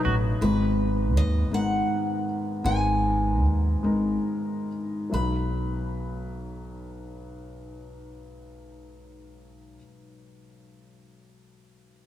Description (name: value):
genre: acoustic folk-pop ballad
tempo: 44-55 BPM (dotted quarters)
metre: 6/8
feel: straight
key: B major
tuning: A4 = 440 Hz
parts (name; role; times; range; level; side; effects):
- warm baby grand piano; accompaniment; 0.0-12.1 s; G#1 to B4; -28 LUFS; left 2 dB; none
- upright bass; bass; 0.0-9.8 s; G#1 to D#2; -27 LUFS; right 1 dB; none
- picked old ladder-braced acoustic guitar; melody; 0.4-9.8 s; B4 to B5; -30 LUFS; equal; none
room: moderate plate reverb, RT60 3.4 s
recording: heard from further back in the room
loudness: -23 LUFS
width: side -12 dB against mid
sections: 0.4-5.1 A section; 5.1-10.5 B section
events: slowing down 0.4-5.1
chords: 0.4 G#madd9; 5.1 B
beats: | 0.41 1.51 | 2.64 3.83 | 5.12 6.47 | 7.80 9.13